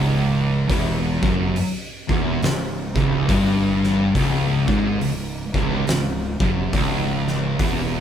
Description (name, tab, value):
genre	stoner and doom metal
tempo	70 BPM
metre	4/4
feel	swing 61% on 8ths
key	C# minor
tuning	A4 = 435 Hz
part	fuzz guitar	riff	0.0-8.0 s	C#2 to G#2	-25 LUFS	left 1 dB	distortion
part	thick fuzz guitar	riff	0.0-8.0 s	C#2 to G#2	-26 LUFS	left 6 dB	distortion
part	thick fuzz guitar	riff	0.0-8.0 s	C#2 to G#2	-24 LUFS	right 6 dB	distortion
part	fuzz fingered electric bass	bass	0.0-8.0 s	C#1 to G#1	-28 LUFS	equal	overdrive
part	oversized low-tuned drum kit	drums	0.7-7.8 s	hi-hat, kick drum, snare drum	-24 LUFS	equal	none
room	light reverb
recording	band playing live in one room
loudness	-18 LUFS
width	side -9 dB against mid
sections	0.0-8.0 A section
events	none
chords	0.0 C#m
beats	| 0.70 1.57 2.43 3.29 | 4.16 5.02 5.88 6.74 | 7.60